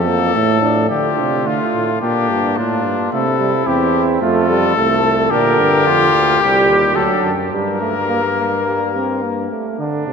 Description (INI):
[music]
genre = classical, imitative canzona for brass ensemble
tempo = 108 BPM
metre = 4/4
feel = straight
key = G minor from 5.3 s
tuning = A4 = 443 Hz
[part]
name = clear trumpet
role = melody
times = 0.0-9.5 s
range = D4 to Bb4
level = -18 LUFS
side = left 7 dB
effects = none
[part]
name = warm trombone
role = accompaniment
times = 0.0-9.8 s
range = D3 to D4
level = -20 LUFS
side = right 2 dB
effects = none
[part]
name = warm bass trombone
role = bass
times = 0.0-10.1 s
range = C2 to D3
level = -20 LUFS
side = right 2 dB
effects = none
[part]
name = mellow trumpet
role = second line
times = 0.9-10.1 s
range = Bb3 to Bb4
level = -20 LUFS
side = right 4 dB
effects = none
[sound]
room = wet cathedral reverb, RT60 4.8 s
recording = none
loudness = -13 LUFS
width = side -6 dB against mid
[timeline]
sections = 0.9-9.8 A section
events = none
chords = 0.0 F; 0.9 Dm; 2.0 Gm; 3.1 C; 4.2 F; 5.3 Bb; 6.4 Cm; 7.0 D; 7.5 Gm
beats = 0.35 | 0.91 1.47 2.03 2.58 | 3.13 3.67 4.22 4.77 | 5.31 5.86 6.40 6.96 | 7.52 8.10 8.66 9.23 | 9.79